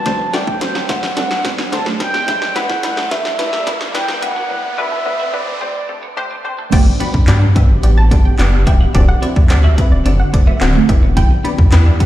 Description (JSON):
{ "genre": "dance-pop", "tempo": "108 BPM", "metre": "4/4", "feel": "straight", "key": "E minor", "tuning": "A4 = 440 Hz", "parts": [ { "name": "mellow horn-like synth lead", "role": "melody", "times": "0.0-5.9 s", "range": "D5 to A5", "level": "-20 LUFS", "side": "right 1 dB", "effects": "chorus, ping-pong delay" }, { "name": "glassy FM pad", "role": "sustained chords", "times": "0.0-12.1 s", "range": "F#2 to D5", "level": "-26 LUFS", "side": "equal", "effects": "ensemble chorus, built-in reverb, sidechain pumping" }, { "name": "riser", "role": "sound effects", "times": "0.0-5.6 s", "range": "none", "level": "-27 LUFS", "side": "right 2 dB", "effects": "none" }, { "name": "punchy chord stab", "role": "accompaniment", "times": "0.1-12.1 s", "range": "F#2 to E5", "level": "-23 LUFS", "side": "left 2 dB", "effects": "chorus, sidechain pumping" }, { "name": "mallet-like synth pluck", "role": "arpeggios", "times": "0.1-6.7 s", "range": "D3 to E4", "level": "-35 LUFS", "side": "right 4 dB", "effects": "none" }, { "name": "twelve-string electric guitar", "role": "riff", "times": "0.1-12.1 s", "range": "A3 to F#4", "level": "-24 LUFS", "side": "right 5 dB", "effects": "lush chorus" }, { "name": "punchy analog drum machine", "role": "drums", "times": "0.1-12.1 s", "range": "crash cymbal, handclaps, hi-hat, kick drum, snare drum", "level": "-15 LUFS", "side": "equal", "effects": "none" }, { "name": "wide unison pluck", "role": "melody", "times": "6.7-12.0 s", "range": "D5 to B5", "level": "-26 LUFS", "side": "right 1 dB", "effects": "sidechain pumping, ping-pong delay" }, { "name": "warm sub bass", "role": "bass", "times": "6.7-11.9 s", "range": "C#1 to G2", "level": "-12 LUFS", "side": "equal", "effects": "sidechain pumping" } ], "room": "light reverb", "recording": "played on a big sound system in a bare room, stone room reverb, high-pass filter, lossy compression artefacts", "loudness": "-12 LUFS", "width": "side -14 dB against mid", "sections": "0.0-6.7 A section; 6.7-12.1 B section", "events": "build-up 0.0-6.7; drum fill 0.0-4.5; riser 0.0-6.7; break 4.5-6.7; drop 6.7-12.1", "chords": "0.1 D7; 2.0 Em7; 4.2 Bm7/F#; 5.6 D7sus4; 6.7 Gmaj7; 8.9 D7; 10.9 Em7" }